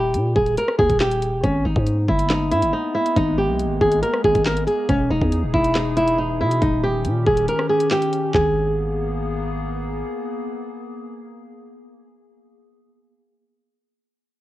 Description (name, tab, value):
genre	hip hop, drill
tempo	139 BPM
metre	4/4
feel	half-time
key	G# harmonic minor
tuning	A4 = 441 Hz
part	flamenco guitar	melody	0.0-9.6 s	C#4 to A#4	-20 LUFS	equal	low-pass filter, cassette tape, analog delay
part	growling 808-style bass	bass	0.0-10.0 s	D#1 to B2	-23 LUFS	equal	none
part	drill drum kit	drums	0.1-8.4 s	handclaps, hi-hat, kick drum, rim click, snare drum, toms	-24 LUFS	equal	overdrive, cassette tape
part	warbly tape-like pad	sustained chords	1.9-12.6 s	D#3 to G#4	-29 LUFS	left 2 dB	chorus, built-in reverb
room	digital ambience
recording	home recording on cassette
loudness	-18 LUFS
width	side -15 dB against mid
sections	0.0-8.3 A section; 8.3-11.8 B section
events	kick muted 7.5-8.3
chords	0.0 D#; 1.4 G#madd9; 4.9 Emaj7; 6.6 D#7; 8.3 G#madd9